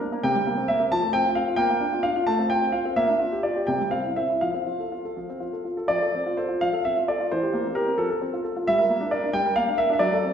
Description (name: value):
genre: classical-period piano sonatina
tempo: 79-90 BPM (dotted quarters)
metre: 6/8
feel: rubato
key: F major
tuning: A4 = 444 Hz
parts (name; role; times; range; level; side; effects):
- warm concert grand piano; solo; 0.0-10.3 s; C3 to A5; -22 LUFS; equal; none
room: wet recital hall reverb, RT60 1.4 s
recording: recorded in a church or concert hall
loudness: -22 LUFS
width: side -8 dB against mid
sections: 0.0-5.9 A section; 5.9-10.3 B section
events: none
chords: 0.2 C5; 0.9 F; 1.6 Bb; 2.3 F/A; 3.0 Gm7/Bb; 3.7 C; 4.4 F; 7.3 C7/E; 8.0 F; 8.7 Gm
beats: | 0.23 0.91 | 1.58 2.27 | 2.97 3.68 | 4.42 5.17 | 5.91 6.61 | 7.30 7.98 | 8.67 9.34 | 10.01